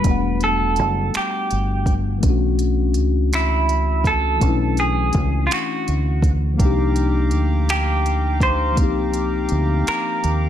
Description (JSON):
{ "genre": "slow six-eight R&B", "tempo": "55 BPM (dotted quarters)", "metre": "6/8", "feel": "straight", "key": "unclear", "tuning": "A4 = 437 Hz", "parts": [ { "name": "semi-hollow electric guitar", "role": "melody", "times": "0.0-10.5 s", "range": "E4 to C5", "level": "-22 LUFS", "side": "right 3 dB", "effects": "tremolo, slapback echo" }, { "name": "mellow tine electric piano", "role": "accompaniment", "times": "0.0-10.5 s", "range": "E3 to F#5", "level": "-23 LUFS", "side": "left 6 dB", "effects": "analog chorus" }, { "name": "smooth R&B drum kit", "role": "drums", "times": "0.0-10.4 s", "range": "finger snaps, hi-hat, kick drum", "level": "-22 LUFS", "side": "right 1 dB", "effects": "none" }, { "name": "deep dub fingered electric bass", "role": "bass", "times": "0.1-10.5 s", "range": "E1 to Eb2", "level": "-20 LUFS", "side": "equal", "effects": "none" }, { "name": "accordion", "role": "sustained chords", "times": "6.6-10.5 s", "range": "G4 to D6", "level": "-29 LUFS", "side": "right 1 dB", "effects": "none" } ], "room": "digital ambience", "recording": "none", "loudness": "-17 LUFS", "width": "side -10 dB against mid", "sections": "0.0-10.5 A section", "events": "none", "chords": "0.0 Em11; 2.2 Bm11; 6.6 Cm11" }